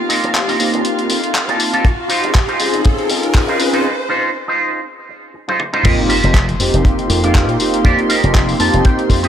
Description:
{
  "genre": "nu-disco, nu disco",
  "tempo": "120 BPM",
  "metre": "4/4",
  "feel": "swing 56% on 16ths",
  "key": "unclear",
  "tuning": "A4 = 438 Hz",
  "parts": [
    { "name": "mellow synth brass", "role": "accompaniment", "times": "0.0-9.3 s", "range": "Bb3 to A5", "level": "-18 LUFS", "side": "equal", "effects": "chorus, sidechain pumping, tape echo" },
    { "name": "dark chamber string section", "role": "sustained chords", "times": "0.0-9.3 s", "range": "Bb3 to C6", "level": "-24 LUFS", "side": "left 1 dB", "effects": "sidechain pumping" },
    { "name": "riser and impact", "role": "sound effects", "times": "0.0-7.8 s", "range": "none", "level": "-24 LUFS", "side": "equal", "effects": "none" },
    { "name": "electric guitar with an envelope filter", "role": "riff", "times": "0.1-9.3 s", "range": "Eb4 to A5", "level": "-19 LUFS", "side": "right 2 dB", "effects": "analog chorus, low-pass filter, tape echo" },
    { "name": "dusty soul sampler-style drum kit", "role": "drums", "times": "0.1-9.3 s", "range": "crash cymbal, handclaps, hi-hat, toms", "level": "-20 LUFS", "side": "left 2 dB", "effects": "high-pass filter on snare, high-pass filter on hats, high-pass filter on toms, high-pass filter on cymbals" },
    { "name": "slap bass with an envelope filter", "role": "bass", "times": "0.2-9.3 s", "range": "F1 to Bb2", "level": "-20 LUFS", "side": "equal", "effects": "high-pass filter" },
    { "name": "kick drum", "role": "drums", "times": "1.8-9.2 s", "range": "none", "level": "-12 LUFS", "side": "equal", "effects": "none" }
  ],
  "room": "light reverb, small room ambience",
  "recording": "none",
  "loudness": "-12 LUFS",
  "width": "side -9 dB against mid",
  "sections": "0.0-5.8 A section; 5.8-9.3 B section",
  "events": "build-up 0.0-5.8; riser 0.0-3.8; filter sweep on clean electric guitar 0.0-5.8; filter sweep on analog polysynth 0.0-5.8; break 3.8-5.8; drum fill 5.5-5.8; drop 5.8-9.3; impact 5.8-7.8; clean electric guitar fill 8.3-9.3",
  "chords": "0.0 F9sus4; 1.8 Dbmaj9; 5.8 F9sus4",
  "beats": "0.35 0.85 1.35 | 1.85 2.35 2.85 3.35 | 3.85 4.35 4.85 5.35 | 5.85 6.35 6.85 7.35 | 7.85 8.35 8.85"
}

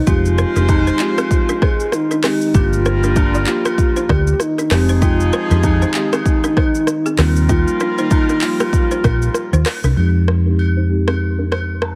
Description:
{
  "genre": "afrobeats",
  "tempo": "97 BPM",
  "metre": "4/4",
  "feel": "swing 58% on 16ths",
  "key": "F dorian",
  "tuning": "A4 = 440 Hz",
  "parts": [
    { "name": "soft octave-layered synth lead", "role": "melody", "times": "0.0-9.7 s", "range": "C4 to Ab4", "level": "-22 LUFS", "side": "equal", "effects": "chorus, tremolo" },
    { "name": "balafon", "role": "riff", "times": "0.0-11.6 s", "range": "Bb3 to D5", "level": "-30 LUFS", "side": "equal", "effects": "low-pass filter, delay" },
    { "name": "warm horn section", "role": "second line", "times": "0.1-9.6 s", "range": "F3 to C5", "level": "-28 LUFS", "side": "equal", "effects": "none" },
    { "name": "marimba with medium mallets", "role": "accompaniment", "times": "0.1-11.1 s", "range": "G3 to G5", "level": "-25 LUFS", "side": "equal", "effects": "low-pass filter" },
    { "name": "hollow-body short-scale fingered electric bass", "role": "bass", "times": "0.1-12.0 s", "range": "F1 to F2", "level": "-18 LUFS", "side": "equal", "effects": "none" },
    { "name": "deep house drum kit", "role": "drums", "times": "0.1-12.0 s", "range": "handclaps, hi-hat, kick drum, rim click, shaker", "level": "-20 LUFS", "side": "equal", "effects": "overdrive" },
    { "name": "agogo bells and woodblock", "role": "percussion", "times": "0.1-12.0 s", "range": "none", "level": "-33 LUFS", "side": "equal", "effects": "none" }
  ],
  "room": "small room ambience",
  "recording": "heavily compressed radio sound",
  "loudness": "-16 LUFS",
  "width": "mono",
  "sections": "0.0-10.0 A section; 10.0-12.0 B section",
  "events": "filter sweep 10.0-12.0",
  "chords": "0.1 Fm7; 2.5 Gm7; 4.7 Fm7; 7.2 Ebadd9; 10.0 Fm7",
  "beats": "| 0.07 0.69 1.31 1.93 | 2.54 3.16 3.78 4.40 | 5.02 5.64 6.26 6.88 | 7.49 8.11 8.73 9.35 | 9.97 10.59 11.21 11.82"
}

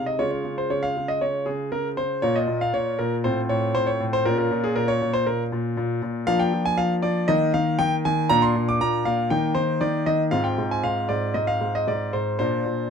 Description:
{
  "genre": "classical-period piano sonatina",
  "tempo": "118 BPM",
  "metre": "4/4",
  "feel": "straight",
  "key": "Eb major from 6.3 s",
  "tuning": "A4 = 444 Hz",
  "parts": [
    { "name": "bright concert grand piano", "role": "solo", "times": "0.0-12.9 s", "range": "Ab2 to D6", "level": "-21 LUFS", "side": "equal", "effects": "none" }
  ],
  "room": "light reverb",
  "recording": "dark, warm production",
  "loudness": "-21 LUFS",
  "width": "side -6 dB against mid",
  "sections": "0.0-12.9 A section",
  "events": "none",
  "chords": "0.2 Db; 2.2 Bb5; 3.2 F/A; 4.3 Bbm; 6.3 Bb/F; 7.3 Eb5; 8.3 Bb; 9.3 Eb5; 10.3 Fm/Ab; 12.4 Bb",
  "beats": "| 0.19 0.70 1.21 1.72 | 2.23 2.74 3.25 3.75 | 4.26 4.77 5.27 5.77 | 6.28 6.78 7.28 7.79 | 8.29 8.80 9.31 9.82 | 10.33 10.84 11.35 11.87 | 12.40"
}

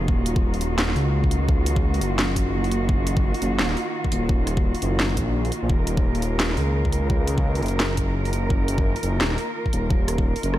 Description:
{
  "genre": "half-time drum and bass",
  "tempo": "171 BPM",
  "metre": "4/4",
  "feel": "swing 59% on 16ths, half-time",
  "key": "Eb minor",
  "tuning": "A4 = 440 Hz",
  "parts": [
    { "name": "muted studio cello section", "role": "sustained chords", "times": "0.0-10.6 s", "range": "Eb3 to Bb4", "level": "-28 LUFS", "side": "equal", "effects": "sidechain pumping" },
    { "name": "dark detuned saw bass", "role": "bass", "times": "0.0-10.6 s", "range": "Eb1 to Db2", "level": "-23 LUFS", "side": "equal", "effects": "tube saturation" },
    { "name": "electronic kick drum", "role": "drums", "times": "0.1-10.2 s", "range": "none", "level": "-22 LUFS", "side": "equal", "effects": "overdrive" },
    { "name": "drum and bass drum kit", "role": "drums", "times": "0.3-10.6 s", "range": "hi-hat, rim click, snare drum", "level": "-27 LUFS", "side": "equal", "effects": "overdrive" }
  ],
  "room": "little or no reverb",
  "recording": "none",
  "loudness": "-20 LUFS",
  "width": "side -14 dB against mid",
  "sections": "0.0-10.6 A section",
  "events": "none",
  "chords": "0.0 Ebmadd9",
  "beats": "| 0.08 0.43 0.79 1.14 | 1.49 1.84 2.19 2.54 | 2.89 3.24 3.59 3.94 | 4.29 4.64 5.00 5.35 | 5.70 6.05 6.40 6.75 | 7.10 7.45 7.80 8.15 | 8.50 8.86 9.21 9.56 | 9.91 10.26"
}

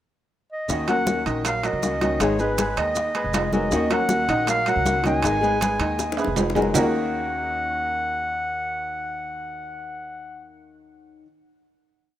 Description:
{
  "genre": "latin, Cuban son and guajira",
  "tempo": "159 BPM",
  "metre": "4/4",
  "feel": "straight",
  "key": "Eb minor",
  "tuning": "A4 = 438 Hz",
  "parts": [
    { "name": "warm clarinet", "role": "melody", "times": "0.5-10.5 s", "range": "Cb5 to Ab5", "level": "-25 LUFS", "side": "equal", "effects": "none" },
    { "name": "nylon-string guitar", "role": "accompaniment", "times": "0.7-11.3 s", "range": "Eb3 to Ab4", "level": "-27 LUFS", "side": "left 4 dB", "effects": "none" },
    { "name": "clear grand piano", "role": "arpeggios", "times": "0.7-11.2 s", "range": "Eb3 to Eb5", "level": "-27 LUFS", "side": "right 2 dB", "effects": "none" },
    { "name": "upright bass", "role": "bass", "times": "0.7-11.2 s", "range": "F1 to Eb2", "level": "-30 LUFS", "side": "right 1 dB", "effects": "none" },
    { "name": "bongos", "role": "percussion", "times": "0.7-6.8 s", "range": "none", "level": "-33 LUFS", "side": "left 7 dB", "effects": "none" },
    { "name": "congas", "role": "percussion", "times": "0.7-6.8 s", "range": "none", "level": "-30 LUFS", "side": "left 1 dB", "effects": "none" },
    { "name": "maracas", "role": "percussion", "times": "0.7-6.8 s", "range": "none", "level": "-33 LUFS", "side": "right 7 dB", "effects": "none" },
    { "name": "timbales", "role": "percussion", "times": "0.9-6.8 s", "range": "none", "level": "-30 LUFS", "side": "right 6 dB", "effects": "none" }
  ],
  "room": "light reverb, small room ambience",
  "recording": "rough home demo mix",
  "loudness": "-20 LUFS",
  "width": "side -12 dB against mid",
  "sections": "0.0-0.7 pickup bar; 0.7-6.7 montuno (vamp); 6.7-9.8 final chord",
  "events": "drum fill 5.6-6.7",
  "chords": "0.0 N.C.; 0.7 Ebm7; 2.2 Abm; 3.7 Ebm7; 5.2 Abm; 6.7 Ebm7",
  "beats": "0.32 | 0.69 1.07 1.45 1.83 | 2.21 2.59 2.97 3.35 | 3.72 4.10 4.48 4.86 | 5.24 5.61 5.99 6.37 | 6.74 7.12 7.50 7.88 | 8.25 8.63 9.01 9.39"
}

